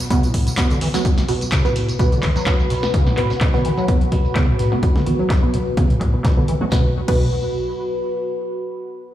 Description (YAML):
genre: acid house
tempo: 127 BPM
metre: 4/4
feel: swing 54% on 16ths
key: unclear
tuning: A4 = 439 Hz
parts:
  - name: punchy analog drum machine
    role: drums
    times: 0.0-7.2 s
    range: crash cymbal, handclaps, hi-hat, snare drum, tambourine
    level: -27 LUFS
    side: equal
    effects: low-pass filter on hats, low-pass filter on perc, low-pass filter on snare, low-pass filter on cymbals, low-pass filter on room
  - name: deep dark ambient pad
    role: texture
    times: 0.9-8.6 s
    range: F#4 to B5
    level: -26 LUFS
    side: left 1 dB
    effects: chorus, built-in reverb, sidechain pumping
  - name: deep acid bass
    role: riff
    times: 0.1-7.3 s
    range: A2 to F#3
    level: -22 LUFS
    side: equal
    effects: overdrive, ensemble chorus, ping-pong delay
  - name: filtered dub chord stab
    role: stabs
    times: 0.1-7.3 s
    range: B3 to B4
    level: -25 LUFS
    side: right 2 dB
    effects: phaser, ping-pong delay
  - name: dusty soul sampler-style drum kit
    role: drums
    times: 0.1-6.6 s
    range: hi-hat, snare drum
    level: -35 LUFS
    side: left 1 dB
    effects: high-pass filter on snare, sidechain pumping on hats, high-pass filter on hats
  - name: electronic kick drum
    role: drums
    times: 0.1-7.2 s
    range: none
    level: -18 LUFS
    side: equal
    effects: none
room: light reverb, digital ambience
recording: played on a big sound system in a bare room, large studio reverb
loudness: -16 LUFS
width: side -12 dB against mid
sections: 0.0-6.7 A section; 6.7-8.6 B section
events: filter sweep on drum 0.0-6.7; filter sweep on acid bass 0.0-6.7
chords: 0.0 B5